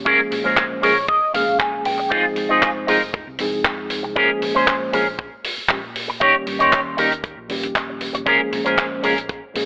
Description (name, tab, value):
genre	nu-disco, nu disco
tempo	117 BPM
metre	4/4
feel	straight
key	Bb dorian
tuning	A4 = 440 Hz
part	mellow tine electric piano	accompaniment	0.0-9.7 s	Eb3 to C6	-24 LUFS	equal	medium stereo tremolo, sidechain pumping, tape echo
part	hollow-body short-scale fingered electric bass	bass	0.0-9.7 s	F1 to Bb2	-40 LUFS	equal	sidechain pumping
part	electric guitar with an envelope filter	riff	0.1-9.6 s	Db4 to Ab5	-17 LUFS	equal	analog chorus, low-pass filter
part	kick drum	drums	0.1-9.4 s	none	-24 LUFS	equal	studio reverb
part	tight funk drum kit	drums	0.3-9.7 s	handclaps, hi-hat	-23 LUFS	equal	studio reverb
room	moderate plate reverb, RT60 1.6 s, small room ambience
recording	telephone sound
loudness	-16 LUFS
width	side -31 dB against mid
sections	0.0-9.7 A section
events	clean electric guitar fill 0.6-2.1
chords	0.1 Bbm7; 2.1 Fm7; 4.2 Bbm7; 6.2 Eb7; 8.3 Bbm7